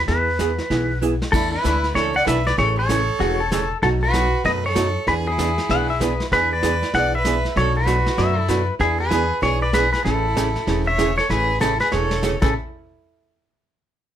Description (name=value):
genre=country, western swing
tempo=193 BPM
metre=4/4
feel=swing 62% on 8ths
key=A major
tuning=A4 = 440 Hz
part: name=upright bass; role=bass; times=0.0-12.5 s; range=E1 to F#2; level=-24 LUFS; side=left 1 dB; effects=none
part: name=pedal steel guitar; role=melody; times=0.1-12.5 s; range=G#4 to F#5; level=-22 LUFS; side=equal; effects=none
part: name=archtop guitar, miked and amplified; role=accompaniment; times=0.1-12.5 s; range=A2 to A4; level=-24 LUFS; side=right 4 dB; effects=none
part: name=vintage brush drum kit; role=drums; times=0.1-12.5 s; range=brushed snare drum, crash cymbal, hi-hat, kick drum, snare drum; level=-27 LUFS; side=equal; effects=none
part: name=clear fiddle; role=second line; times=1.3-12.5 s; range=E4 to D5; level=-27 LUFS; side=right 3 dB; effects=none
part: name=clean lap steel guitar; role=second line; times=3.2-8.7, 12.4-12.5 s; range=F#4 to F#5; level=-24 LUFS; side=left 6 dB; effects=none
room=light reverb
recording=none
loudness=-17 LUFS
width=side -10 dB against mid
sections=0.0-11.3 A section; 11.3-12.5 B section; 12.5-13.8 C section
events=drum fill 1.0-1.3, 11.9-12.2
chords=0.1 E; 1.3 E7sus4; 2.6 Amaj7; 3.8 B7; 5.1 E7; 7.6 Bm7; 8.8 E7; 10.1 Amaj7; 12.5 N.C.